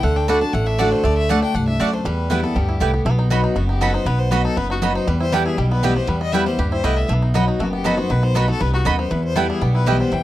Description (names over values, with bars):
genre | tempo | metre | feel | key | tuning
bluegrass | 238 BPM | 4/4 | straight | E minor | A4 = 439 Hz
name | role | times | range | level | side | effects
bluegrass banjo | melody | 0.0-10.2 s | D#3 to G4 | -28 LUFS | right 2 dB | none
clear fiddle | melody | 0.0-10.2 s | F#4 to B5 | -26 LUFS | left 4 dB | none
picked steel-string acoustic guitar | accompaniment | 0.0-10.2 s | E2 to F#4 | -21 LUFS | left 1 dB | none
upright bass | bass | 0.0-10.2 s | F#1 to E2 | -20 LUFS | equal | none
mandolin | stabs | 0.3-10.0 s | A3 to B5 | -22 LUFS | right 6 dB | none
room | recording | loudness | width
little or no reverb | dry, close 1970s-style studio recording | -16 LUFS | side -14 dB against mid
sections
0.0-3.1 A section; 3.1-10.2 B section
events
none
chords
0.0 D; 2.1 Em; 3.1 B; 5.1 Em; 7.1 B; 9.1 Em